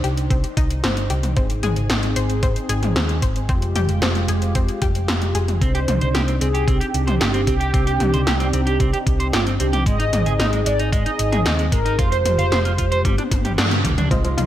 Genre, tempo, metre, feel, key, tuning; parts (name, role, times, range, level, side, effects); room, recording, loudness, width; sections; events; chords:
synthwave; 113 BPM; 4/4; straight; C minor; A4 = 439 Hz
chorused pulse-width pad; sustained chords; 0.0-14.5 s; Ab3 to C5; -27 LUFS; left 1 dB; sidechain pumping
analog pluck; arpeggios; 0.0-5.6, 14.1-14.5 s; C4 to C5; -28 LUFS; left 4 dB; chorus, cassette tape, digital delay
hollow-body short-scale picked electric bass; bass; 0.0-14.5 s; F1 to G2; -21 LUFS; equal; tube saturation
80s electronic pad drums; drums; 0.0-14.5 s; hi-hat, snare drum, toms; -24 LUFS; left 1 dB; gated reverb on snare and toms
electronic kick drum; drums; 0.3-14.2 s; -20 LUFS; equal; overdrive
mellow synth brass; melody; 5.6-13.0 s; F4 to Eb5; -24 LUFS; right 2 dB; chorus, digital delay
clean electric guitar; riff; 5.6-14.3 s; G3 to F5; -27 LUFS; right 3 dB; analog chorus, low-pass filter, digital delay
bright grand piano; stabs; 14.1-14.5 s; Ab3 to Eb5; -26 LUFS; right 2 dB; low-pass filter
light reverb, digital ambience; -17 LUFS; side -12 dB against mid
0.0-14.1 A section
drum fill 13.0-14.1; band accent 13.6
0.0 Cmadd9; 1.4 Ab; 3.5 Fmadd9; 5.6 Cmadd9; 9.9 Ab; 12.0 Fmadd9; 13.0 G